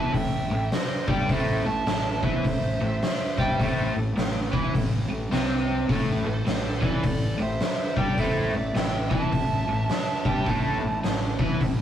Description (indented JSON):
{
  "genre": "blues rock power trio and southern rock",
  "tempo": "105 BPM",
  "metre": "4/4",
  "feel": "swing 63% on 8ths",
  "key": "A minor",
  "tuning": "A4 = 438 Hz",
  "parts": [
    { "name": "fuzz lead guitar", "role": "melody", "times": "0.0-11.8 s", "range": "C5 to A5", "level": "-31 LUFS", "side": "right 2 dB", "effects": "distortion" },
    { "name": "bluesy overdriven lead guitar", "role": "second line", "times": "0.0-11.8 s", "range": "A4 to E5", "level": "-36 LUFS", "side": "right 4 dB", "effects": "distortion" },
    { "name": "crunchy overdriven guitar", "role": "riff", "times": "0.0-11.8 s", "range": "A2 to G4", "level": "-28 LUFS", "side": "equal", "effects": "spring reverb" },
    { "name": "fuzz fingered electric bass", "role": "bass", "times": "0.0-11.8 s", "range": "A1 to G2", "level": "-30 LUFS", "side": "equal", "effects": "overdrive" },
    { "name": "oversized low-tuned drum kit", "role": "drums", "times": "0.1-11.8 s", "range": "hi-hat, kick drum, snare drum", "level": "-26 LUFS", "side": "left 1 dB", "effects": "none" }
  ],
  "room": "light reverb",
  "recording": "rough rehearsal-room recording, warm saturation",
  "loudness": "-22 LUFS",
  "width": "side -10 dB against mid",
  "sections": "0.0-11.8 A section",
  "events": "none",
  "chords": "0.0 Am"
}